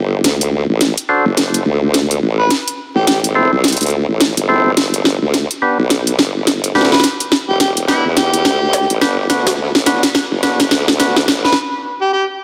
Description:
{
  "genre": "glitch hop",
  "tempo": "106 BPM",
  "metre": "4/4",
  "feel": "swing 60% on 16ths",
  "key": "unclear",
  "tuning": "A4 = 436 Hz",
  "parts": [
    { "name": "formant-sweep wobble bass", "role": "bass", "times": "0.0-11.5 s", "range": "E1 to E2", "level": "-19 LUFS", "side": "equal", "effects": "chorus, high-pass filter" },
    { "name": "drum and bass drum kit", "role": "drums", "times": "0.2-11.6 s", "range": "hi-hat, snare drum", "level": "-17 LUFS", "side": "equal", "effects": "overdrive" },
    { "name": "percussive tonewheel organ", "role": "stabs", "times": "1.1-11.2 s", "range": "B3 to C5", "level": "-21 LUFS", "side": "equal", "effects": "overdrive, vintage 12-bit sampler grit, digital delay" },
    { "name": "overdriven harmonica", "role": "melody", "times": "2.4-3.2, 6.9-12.2 s", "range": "E4 to B4", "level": "-20 LUFS", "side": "equal", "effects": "digital delay" }
  ],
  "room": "moderate lush hall reverb, RT60 1.7 s, digital ambience",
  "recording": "dense, heavily limited modern master, vinyl crackle",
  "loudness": "-15 LUFS",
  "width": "mono",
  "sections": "0.0-12.4 A section",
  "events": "build-up 0.0-12.4; drum fill 0.0-11.6; break 11.6-12.4",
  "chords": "0.2 D7; 2.5 Am; 4.8 G; 7.0 Em; 9.3 D; 11.6 N.C."
}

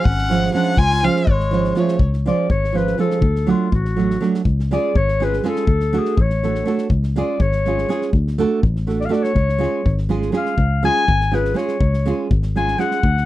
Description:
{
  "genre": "balkan folk, Balkan wedding band",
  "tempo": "245 BPM (eighths)",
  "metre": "5/8",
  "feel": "straight",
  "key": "C# phrygian dominant",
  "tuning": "A4 = 438 Hz",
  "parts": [
    { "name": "rich violin", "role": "melody", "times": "0.0-2.0 s", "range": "C#5 to G#5", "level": "-22 LUFS", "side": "left 2 dB", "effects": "none" },
    { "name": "warm clarinet", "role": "second line", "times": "0.0-13.3 s", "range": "G#3 to G#5", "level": "-22 LUFS", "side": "left 3 dB", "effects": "none" },
    { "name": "fingered electric bass", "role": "bass", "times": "0.1-13.3 s", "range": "G#1 to D2", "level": "-20 LUFS", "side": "left 1 dB", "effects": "none" },
    { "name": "loose indie drum kit", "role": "percussion", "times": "0.1-13.2 s", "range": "kick drum, snare drum", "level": "-20 LUFS", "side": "left 1 dB", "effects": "none" },
    { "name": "nylon-string guitar", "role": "accompaniment", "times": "0.3-13.0 s", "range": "E#3 to A4", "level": "-20 LUFS", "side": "right 5 dB", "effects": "none" }
  ],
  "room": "little or no reverb",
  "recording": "dry, close 1970s-style studio recording",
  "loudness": "-16 LUFS",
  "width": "side -15 dB against mid",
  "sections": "0.0-2.0 A section; 2.0-13.3 B section",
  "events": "clarinet solo 2.0-13.3",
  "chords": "0.0 C#; 3.2 D; 4.5 C#; 5.7 D; 6.9 C#; 8.1 D; 9.4 C#"
}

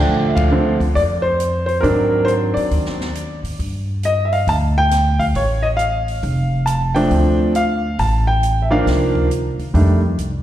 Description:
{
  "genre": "jazz piano trio",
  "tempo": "137 BPM",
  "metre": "4/4",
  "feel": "swing 65% on 8ths",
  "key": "Bb major",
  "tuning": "A4 = 440 Hz",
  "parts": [
    { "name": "clear concert grand piano", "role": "melody", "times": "0.0-10.0 s", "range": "D3 to A5", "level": "-17 LUFS", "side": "equal", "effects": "slapback echo" },
    { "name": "upright bass", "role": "bass", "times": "0.0-10.4 s", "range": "F1 to Bb2", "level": "-19 LUFS", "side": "equal", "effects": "none" },
    { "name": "open jazz drum kit", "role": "drums", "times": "0.1-10.3 s", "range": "hi-hat, kick drum, ride cymbal, snare drum", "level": "-25 LUFS", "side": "equal", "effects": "none" }
  ],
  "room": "light reverb, small room ambience",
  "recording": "live gig heard through the venue's PA, recital hall reverb",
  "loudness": "-15 LUFS",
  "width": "side -12 dB against mid",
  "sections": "0.1-10.4 A section",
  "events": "band accent 0.3",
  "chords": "0.1 Bbmaj9; 1.8 Ab7#11; 3.6 G5; 5.3 F; 7.1 Dm7; 8.9 Cm11; 9.7 F13"
}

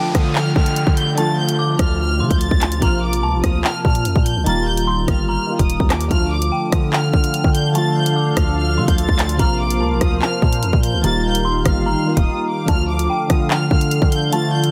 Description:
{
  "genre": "hip hop, drill",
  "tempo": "146 BPM",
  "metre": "4/4",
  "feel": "half-time",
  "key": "D phrygian",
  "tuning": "A4 = 440 Hz",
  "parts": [
    { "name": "bright studio violin section", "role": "melody", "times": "0.0-14.7 s", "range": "D6 to A6", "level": "-28 LUFS", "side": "equal", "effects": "none" },
    { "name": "dark detuned synth bell", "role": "second line", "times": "0.0-14.7 s", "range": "G5 to D6", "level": "-29 LUFS", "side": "equal", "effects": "chorus, phaser, tape echo" },
    { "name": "warbly lo-fi synth keys", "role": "accompaniment", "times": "0.0-14.7 s", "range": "C3 to F4", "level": "-25 LUFS", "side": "equal", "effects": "chorus" },
    { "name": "downlifter", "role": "sound effects", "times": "0.0-2.8 s", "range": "none", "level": "-34 LUFS", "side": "equal", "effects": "none" },
    { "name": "distorted 808-style bass", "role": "bass", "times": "0.1-14.7 s", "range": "Eb1 to D3", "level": "-23 LUFS", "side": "equal", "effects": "distortion" },
    { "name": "drill drum kit", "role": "drums", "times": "0.1-14.7 s", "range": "handclaps, hi-hat, kick drum, rim click", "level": "-20 LUFS", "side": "equal", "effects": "none" },
    { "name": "sweeping resonant pad", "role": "sustained chords", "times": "6.1-14.7 s", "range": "D3 to F5", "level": "-29 LUFS", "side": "equal", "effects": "chorus" }
  ],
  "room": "digital ambience",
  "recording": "dense, heavily limited modern master",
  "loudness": "-18 LUFS",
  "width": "mono",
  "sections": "0.0-12.7 A section; 12.7-14.7 A section",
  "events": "break 12.3-12.7",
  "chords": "0.0 Dm; 2.8 Bbsus2; 4.5 Ebadd9; 6.1 Dm; 9.4 Bbsus2; 11.0 Ebadd9; 12.7 Dm"
}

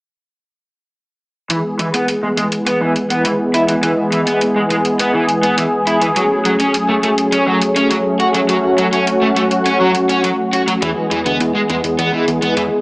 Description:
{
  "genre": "synthwave",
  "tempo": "103 BPM",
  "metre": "4/4",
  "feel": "straight",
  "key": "E major",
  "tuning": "A4 = 440 Hz",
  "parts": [
    { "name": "warm analog pad", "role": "sustained chords", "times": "1.5-12.8 s", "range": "E3 to G#4", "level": "-15 LUFS", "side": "equal", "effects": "chorus" },
    { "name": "overdriven semi-hollow guitar", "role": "riff", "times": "1.5-12.6 s", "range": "E3 to F#4", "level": "-17 LUFS", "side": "equal", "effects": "lush chorus, low-pass filter, tape echo" },
    { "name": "electronic hi-hat", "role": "drums", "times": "1.5-12.7 s", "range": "none", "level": "-22 LUFS", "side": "equal", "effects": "small room ambience" },
    { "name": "fat analog bass", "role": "bass", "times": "10.8-12.7 s", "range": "D2 to E2", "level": "-20 LUFS", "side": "equal", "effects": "tube saturation" }
  ],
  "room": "moderate plate reverb, RT60 1.6 s",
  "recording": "small speaker sound",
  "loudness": "-13 LUFS",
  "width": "side -28 dB against mid",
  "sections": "1.5-12.8 A section",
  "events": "filter sweep on overdriven electric guitar 1.5-12.8",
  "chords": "1.5 E; 6.2 F#madd9; 10.8 E"
}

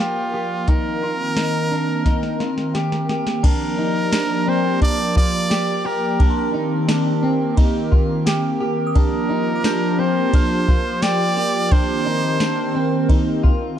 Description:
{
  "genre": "dream pop",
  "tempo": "87 BPM",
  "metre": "4/4",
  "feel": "straight",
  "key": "Bb major",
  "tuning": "A4 = 444 Hz",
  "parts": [
    { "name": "brilliant trumpet", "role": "melody", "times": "0.0-13.1 s", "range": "F4 to D5", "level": "-24 LUFS", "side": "right 2 dB", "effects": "digital delay" },
    { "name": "hollow soft pad", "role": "sustained chords", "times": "0.0-13.8 s", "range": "Eb3 to G5", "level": "-22 LUFS", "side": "equal", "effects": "chorus" },
    { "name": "electric guitar at the edge of break-up", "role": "arpeggios", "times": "0.0-13.8 s", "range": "C4 to G4", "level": "-24 LUFS", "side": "equal", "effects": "lush chorus, digital delay" },
    { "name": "glassy synth bell", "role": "texture", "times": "0.0-12.1 s", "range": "F5 to G6", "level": "-38 LUFS", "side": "right 4 dB", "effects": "none" },
    { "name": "soft vintage rhythm box", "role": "drums", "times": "0.7-13.6 s", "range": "crash cymbal, hi-hat, kick drum, ride cymbal, snare drum, tambourine", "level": "-18 LUFS", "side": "equal", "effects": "none" }
  ],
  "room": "light reverb, digital ambience",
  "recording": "dark, warm production",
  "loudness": "-17 LUFS",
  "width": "side -10 dB against mid",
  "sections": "0.0-3.4 A section; 3.4-13.8 B section",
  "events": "drum fill 2.1-3.4",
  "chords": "0.0 Bb6; 0.7 Cm7; 3.4 Bb6; 6.2 Cm7; 9.0 Bb6; 11.7 Cm7"
}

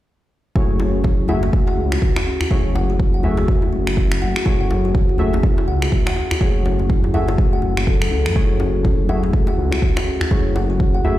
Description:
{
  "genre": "afro house",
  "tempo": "123 BPM",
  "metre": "4/4",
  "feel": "swing 60% on 16ths",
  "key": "F# minor",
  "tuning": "A4 = 440 Hz",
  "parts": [
    { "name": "kalimba", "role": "arpeggios", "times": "0.6-11.0 s", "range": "C#4 to F#5", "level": "-24 LUFS", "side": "left 1 dB", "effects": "sidechain pumping, dub echo" },
    { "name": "warm analog keys", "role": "stabs", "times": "0.6-11.2 s", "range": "A3 to E5", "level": "-25 LUFS", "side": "left 2 dB", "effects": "chorus, sidechain pumping, low-pass filter, dub echo" },
    { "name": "dark detuned saw bass", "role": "bass", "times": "0.6-11.2 s", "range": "F#1 to F#2", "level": "-21 LUFS", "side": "equal", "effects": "sidechain pumping" },
    { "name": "electronic kick drum", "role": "drums", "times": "0.6-10.9 s", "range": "none", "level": "-18 LUFS", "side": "equal", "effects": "studio reverb" },
    { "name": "djembe", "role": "percussion", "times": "0.8-11.2 s", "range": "none", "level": "-26 LUFS", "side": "left 1 dB", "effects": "none" },
    { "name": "electronic finger snaps", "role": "drums", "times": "1.9-10.3 s", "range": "none", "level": "-26 LUFS", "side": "equal", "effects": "studio reverb" }
  ],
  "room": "small room ambience",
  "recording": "played on a big sound system in a bare room, stone room reverb",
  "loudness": "-16 LUFS",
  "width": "side -14 dB against mid",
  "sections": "0.6-11.2 A section",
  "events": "none",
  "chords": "0.6 F#m7"
}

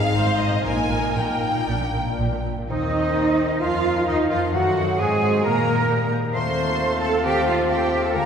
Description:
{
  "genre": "classical",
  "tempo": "115-135 BPM",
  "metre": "4/4",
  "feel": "rubato",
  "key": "Eb major",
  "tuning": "A4 = 441 Hz",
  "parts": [
    { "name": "rich symphonic violin section", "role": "melody", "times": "0.0-8.3 s", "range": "Eb4 to Ab5", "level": "-31 LUFS", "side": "left 2 dB", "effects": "none" },
    { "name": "warm symphonic violin section", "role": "second line", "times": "0.0-8.3 s", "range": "Eb5 to C6", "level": "-30 LUFS", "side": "left 2 dB", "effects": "none" },
    { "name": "rich symphonic viola section", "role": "accompaniment", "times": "0.0-8.3 s", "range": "Eb3 to C5", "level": "-30 LUFS", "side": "right 1 dB", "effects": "none" },
    { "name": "clear French horn section", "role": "sustained chords", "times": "0.0-8.3 s", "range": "Eb3 to F4", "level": "-28 LUFS", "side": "left 1 dB", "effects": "none" },
    { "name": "concert harp", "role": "arpeggios", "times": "0.0-8.3 s", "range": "Ab2 to Eb6", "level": "-30 LUFS", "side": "left 3 dB", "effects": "none" },
    { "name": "warm studio cello section", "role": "bass", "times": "0.0-8.3 s", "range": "Ab2 to C5", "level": "-25 LUFS", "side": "right 2 dB", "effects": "none" },
    { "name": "rich symphonic double bass section", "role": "bass", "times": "0.1-8.3 s", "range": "Ab1 to Bb2", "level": "-28 LUFS", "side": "right 1 dB", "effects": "none" },
    { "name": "bright small flute group", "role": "second line", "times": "2.7-8.3 s", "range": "Eb5 to C6", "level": "-29 LUFS", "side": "equal", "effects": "none" },
    { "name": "mellow cor anglais", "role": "second line", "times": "2.7-8.3 s", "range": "Eb4 to A5", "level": "-30 LUFS", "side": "right 2 dB", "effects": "none" },
    { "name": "warm clarinet", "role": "second line", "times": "2.7-8.3 s", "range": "Eb4 to F5", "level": "-30 LUFS", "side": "right 2 dB", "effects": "none" },
    { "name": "mellow bassoon", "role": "accompaniment", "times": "2.7-8.3 s", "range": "G3 to C4", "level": "-29 LUFS", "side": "left 1 dB", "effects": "none" }
  ],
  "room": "wet church reverb, RT60 3.4 s",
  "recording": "minimal, uncompressed stereo recording",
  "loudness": "-19 LUFS",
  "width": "side -7 dB against mid",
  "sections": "0.0-2.7 A section; 2.7-8.3 B section",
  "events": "none",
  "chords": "0.0 Fm7/Ab; 0.6 Eb/Bb; 1.7 Bb; 2.7 Eb; 4.5 Ebdim7/Gb; 5.4 Eb/Bb; 6.3 F7/Eb"
}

